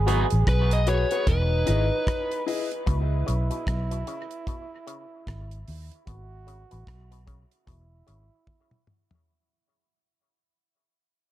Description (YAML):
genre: dub reggae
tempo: 75 BPM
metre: 4/4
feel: swing 60% on 16ths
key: C# minor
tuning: A4 = 440 Hz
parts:
  - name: bright trombone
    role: second line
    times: 0.0-8.8 s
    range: D#4 to G#4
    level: -35 LUFS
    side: right 6 dB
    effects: dub echo
  - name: vintage muted fingered electric bass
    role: bass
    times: 0.0-8.3 s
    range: E1 to D#2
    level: -24 LUFS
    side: equal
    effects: none
  - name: warm baby grand piano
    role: stabs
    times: 0.1-2.7 s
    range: E4 to D#5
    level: -32 LUFS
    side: left 7 dB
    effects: dub echo
  - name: damped 70s drum kit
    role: drums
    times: 0.1-9.3 s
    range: hi-hat, kick drum, rim click, toms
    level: -28 LUFS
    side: equal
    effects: none
  - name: biting lead guitar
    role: melody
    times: 0.5-2.4 s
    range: B4 to D#5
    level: -30 LUFS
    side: left 1 dB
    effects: overdrive, dub echo
  - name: auto-wah clav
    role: arpeggios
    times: 2.9-8.3 s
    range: B2 to C#3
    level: -42 LUFS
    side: left 10 dB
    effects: overdrive, dub echo
room: little or no reverb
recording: dark, warm production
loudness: -22 LUFS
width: side -14 dB against mid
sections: 0.0-9.3 A section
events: break 0.0-2.9, 2.9-9.3; fade-out 0.0-9.3; drum fill 8.5-9.3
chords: 0.0 G#m7; 1.3 Emaj7; 2.9 C#m7; 6.1 G#m7; 7.7 E